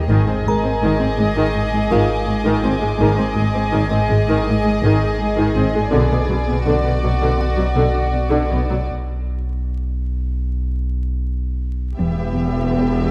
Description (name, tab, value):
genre	cinematic, suspense film score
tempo	81 BPM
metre	4/4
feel	uneven beats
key	unclear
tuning	A4 = 445 Hz
part	dark studio violin section	melody	0.0-13.1 s	D5 to E5	-29 LUFS	equal	none
part	warm studio violin section	second line	0.0-13.1 s	F#4 to Ab4	-28 LUFS	equal	none
part	sub bass with octave	drone	0.0-13.1 s	E1 to B1	-26 LUFS	equal	none
part	music box	texture	0.0-8.9 s	F4 to Bb5	-30 LUFS	equal	none
part	dark chamber viola section	accompaniment	0.1-13.1 s	D3 to C4	-24 LUFS	equal	none
part	dark chamber cello section	riff	0.1-13.0 s	E2 to B3	-28 LUFS	equal	none
part	clear chamber double bass section	bass	0.1-13.1 s	E1 to B1	-25 LUFS	equal	none
part	dark chamber cello section	bass	0.1-13.1 s	E2 to B2	-26 LUFS	equal	none
part	warm chamber violin section	texture	0.1-5.5 s	Ab5 to D6	-34 LUFS	equal	none
room	moderate concert hall reverb, RT60 2.4 s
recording	vinyl crackle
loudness	-19 LUFS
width	mono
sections	0.0-12.0 A section; 12.0-13.1 B section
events	break 8.9-12.0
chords	0.1 Ab5; 5.9 Bm; 12.0 Em